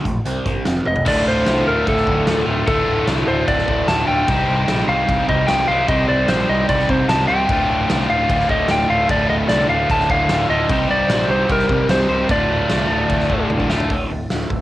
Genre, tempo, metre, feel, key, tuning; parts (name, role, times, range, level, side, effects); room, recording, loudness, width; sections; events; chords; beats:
hard rock; 150 BPM; 4/4; straight; D phrygian; A4 = 440 Hz
overdriven semi-hollow guitar; riff; 0.0-14.6 s; D2 to C4; -23 LUFS; right 1 dB; phaser, cassette tape
growling picked electric bass; bass; 0.1-14.6 s; D1 to C2; -24 LUFS; equal; overdrive
huge arena drum kit; drums; 0.1-14.6 s; crash cymbal, hi-hat, kick drum, snare drum, toms; -24 LUFS; equal; cassette tape
lightly driven lead guitar; melody; 0.9-13.5 s; A4 to A5; -19 LUFS; equal; cassette tape, tape echo
heavy high-gain guitar; riff; 1.1-13.9 s; D2 to C5; -21 LUFS; equal; distortion, cassette tape
light reverb; home recording on cassette; -15 LUFS; side -15 dB against mid
0.0-1.1 A section; 1.1-13.9 B section
drum fill 0.9, 13.5-13.9
0.3 C5; 0.7 F5; 1.1 Dm; 4.3 Cm; 7.5 Dm; 10.7 Cm; 12.3 Dm; 13.9 D5
0.26 0.67 | 1.07 1.47 1.88 2.28 | 2.68 3.08 3.48 3.89 | 4.29 4.69 5.09 5.49 | 5.89 6.29 6.69 7.09 | 7.50 7.89 8.29 8.70 | 9.10 9.50 9.90 10.30 | 10.70 11.10 11.50 11.90 | 12.30 12.70 13.10 13.50 | 13.90 14.30